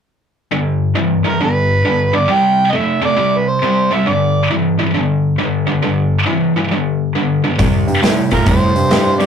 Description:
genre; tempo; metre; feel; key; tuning
blues rock power trio and southern rock; 136 BPM; 4/4; swing 66% on 8ths; G major; A4 = 439 Hz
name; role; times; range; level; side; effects
tight distorted guitar; riff; 0.5-9.3 s; G2 to A3; -14 LUFS; left 1 dB; distortion
warm harmonica; melody; 1.3-4.5, 8.3-9.3 s; Bb4 to G5; -15 LUFS; right 3 dB; overdrive
picked electric bass; bass; 7.6-9.3 s; C2 to Bb2; -18 LUFS; equal; none
big rock drum kit; drums; 7.6-9.3 s; hi-hat, kick drum, snare drum; -15 LUFS; right 1 dB; none
room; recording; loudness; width
wet booth ambience, RT60 0.2 s; rough rehearsal-room recording, tube saturation; -12 LUFS; side -7 dB against mid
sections
0.5-9.3 A section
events
none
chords
0.5 G; 2.3 C5; 4.1 G5; 7.6 C5

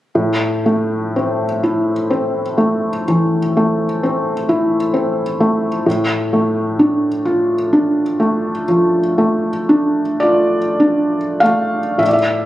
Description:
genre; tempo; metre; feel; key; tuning
classical, romantic nocturne for solo piano; 31-45 BPM (dotted quarters); 12/8; rubato; A minor; A4 = 442 Hz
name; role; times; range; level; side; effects
felt-muted upright piano; solo; 0.1-12.5 s; A2 to F5; -14 LUFS; equal; none
room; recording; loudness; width
light reverb; recorded on a phone in the room, club ambience, compression; -14 LUFS; side -14 dB against mid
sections
0.1-12.0 A section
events
none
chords
0.1 Am; 5.9 Dm/A

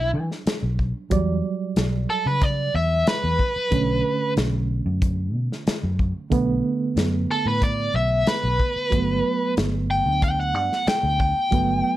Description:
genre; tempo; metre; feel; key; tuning
straight-eighth soul blues; 92 BPM; 4/4; straight; B minor; A4 = 438 Hz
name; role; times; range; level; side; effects
biting overdriven guitar; melody; 0.0-12.0 s; E4 to G5; -23 LUFS; equal; tremolo
reed electric piano; accompaniment; 0.0-12.0 s; D3 to D5; -27 LUFS; right 5 dB; fast tremolo
vintage muted fingered electric bass; bass; 0.0-11.8 s; G1 to E3; -24 LUFS; equal; none
warm soul drum kit; drums; 0.3-11.7 s; hi-hat, kick drum, snare drum; -24 LUFS; left 1 dB; none
room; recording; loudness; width
light reverb; none; -20 LUFS; side -14 dB against mid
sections
0.0-12.0 A section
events
none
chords
0.0 Em9; 3.7 Bm9; 8.9 Gmaj7

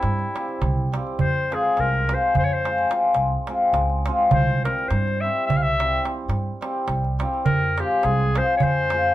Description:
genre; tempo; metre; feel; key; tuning
balkan folk, Balkan wedding band; 211 BPM (eighths); 11/8; straight; C phrygian dominant; A4 = 442 Hz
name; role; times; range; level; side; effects
bright clarinet; melody; 0.0-9.1 s; E4 to F5; -24 LUFS; left 2 dB; slapback echo
cimbalom; accompaniment; 0.0-9.1 s; G3 to Ab4; -23 LUFS; left 2 dB; none
upright bass; bass; 0.0-9.1 s; C2 to G2; -25 LUFS; right 1 dB; none
darbuka; percussion; 0.0-9.1 s; none; -25 LUFS; right 3 dB; none
room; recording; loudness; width
moderate studio ambience, RT60 0.5 s; band playing live in one room; -19 LUFS; side -14 dB against mid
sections
0.0-9.1 A section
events
none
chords
0.0 C; 1.2 Fm; 4.3 C; 7.5 Fm

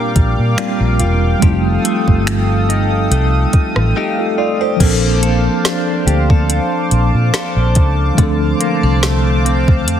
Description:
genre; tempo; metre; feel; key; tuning
contemporary R&B; 71 BPM; 4/4; swing 54% on 16ths; Bb major; A4 = 440 Hz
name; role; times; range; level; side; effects
mellow tine electric piano; accompaniment; 0.0-10.0 s; F3 to D5; -18 LUFS; right 1 dB; medium stereo tremolo
chorused pulse-width pad; sustained chords; 0.0-10.0 s; A4 to Eb6; -21 LUFS; right 1 dB; sidechain pumping
direct-recorded clean electric guitar; arpeggios; 0.0-10.0 s; Bb2 to C5; -22 LUFS; left 6 dB; tape echo
vintage muted fingered electric bass; bass; 0.2-10.0 s; E1 to Bb2; -15 LUFS; equal; none
smooth R&B drum kit; drums; 0.2-10.0 s; crash cymbal, finger snaps, hi-hat, kick drum, rim click, snare drum; -15 LUFS; equal; soft clipping on snare
room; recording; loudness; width
light reverb, digital ambience; dense, heavily limited modern master; -12 LUFS; side -10 dB against mid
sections
0.0-4.8 A section; 4.8-10.0 B section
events
silent gap 4.0-4.8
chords
0.0 Bb6; 1.4 F9; 4.8 Bbmaj9; 8.2 Dm7

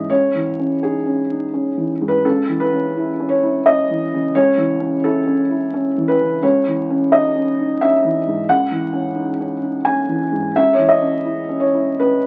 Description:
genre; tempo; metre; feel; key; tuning
neoclassical minimalist piano; 86 BPM; 3/4; rubato; C# minor; A4 = 437 Hz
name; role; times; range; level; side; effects
felt-muted upright piano; solo; 0.0-12.3 s; C#2 to G#5; -18 LUFS; equal; none
room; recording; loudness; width
light reverb; very old 78 rpm record, vinyl crackle, nothing above 10.7 kHz; -18 LUFS; mono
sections
0.0-12.3 A section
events
none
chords
0.0 C#madd9; 2.2 A/C#; 6.4 C#madd9; 10.5 A/C# (rootless)

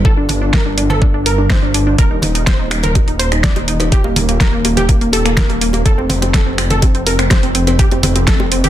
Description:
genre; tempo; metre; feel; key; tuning
progressive house; 124 BPM; 4/4; straight; unclear; A4 = 440 Hz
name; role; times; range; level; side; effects
wide unison pluck; arpeggios; 0.0-8.7 s; Bb3 to D5; -18 LUFS; right 1 dB; sidechain pumping, dub echo
dark detuned saw bass; bass; 0.0-8.7 s; Eb1 to G1; -17 LUFS; equal; sidechain pumping
electronic kick drum; drums; 0.0-8.4 s; none; -13 LUFS; equal; overdrive
pop drum kit; drums; 0.3-8.7 s; finger snaps, hi-hat, snare drum; -19 LUFS; equal; overdrive
congas, cowbell and bongos; percussion; 0.3-8.7 s; none; -23 LUFS; equal; sidechain pumping on perc
room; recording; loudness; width
light reverb, digital ambience; dense, heavily limited modern master; -11 LUFS; side -12 dB against mid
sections
0.0-8.7 A section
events
none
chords
0.0 G5; 2.0 Eb5; 5.9 F5

